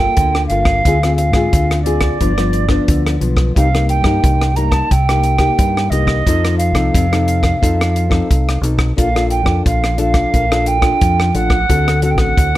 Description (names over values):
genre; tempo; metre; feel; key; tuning
samba and choro; 88 BPM; 4/4; straight; G minor; A4 = 440 Hz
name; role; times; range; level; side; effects
baroque flute; melody; 0.0-12.6 s; D5 to Bb5; -18 LUFS; right 3 dB; none
nylon-string guitar; accompaniment; 0.0-12.6 s; G2 to A4; -19 LUFS; left 4 dB; none
deep dub fingered electric bass; bass; 0.0-12.6 s; G1 to Ab2; -17 LUFS; equal; none
compact cocktail drum kit; drums; 0.2-12.6 s; hi-hat, kick drum, rim click; -17 LUFS; equal; none
room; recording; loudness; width
light reverb; none; -12 LUFS; side -15 dB against mid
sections
0.0-12.6 A section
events
none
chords
0.0 Gm9; 0.8 Dm7b5; 2.2 G7; 3.6 Cm7; 6.3 F7; 9.0 Bbmaj7; 11.7 D7